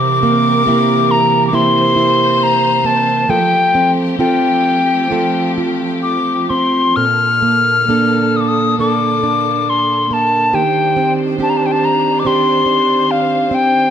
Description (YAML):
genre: celtic folk, Celtic slow air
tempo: 64-72 BPM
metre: 4/4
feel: rubato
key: unclear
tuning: A4 = 440 Hz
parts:
  - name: wooden whistle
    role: melody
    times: 0.0-13.9 s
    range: F5 to F6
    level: -14 LUFS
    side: left 3 dB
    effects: slapback echo
  - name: fingerpicked plugged-in steel-string acoustic guitar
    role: accompaniment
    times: 0.0-13.9 s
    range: Bb2 to A4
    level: -16 LUFS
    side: right 3 dB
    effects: none
  - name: rich studio string section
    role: sustained chords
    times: 0.0-13.9 s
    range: D3 to C5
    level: -23 LUFS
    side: left 1 dB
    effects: none
room: moderate concert hall reverb, RT60 2.1 s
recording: close, detailed microphones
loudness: -12 LUFS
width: side -9 dB against mid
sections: 0.0-13.9 A section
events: none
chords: 0.0 C7; 3.3 Fadd9; 6.9 Bbmaj7; 10.5 Cmadd9/Eb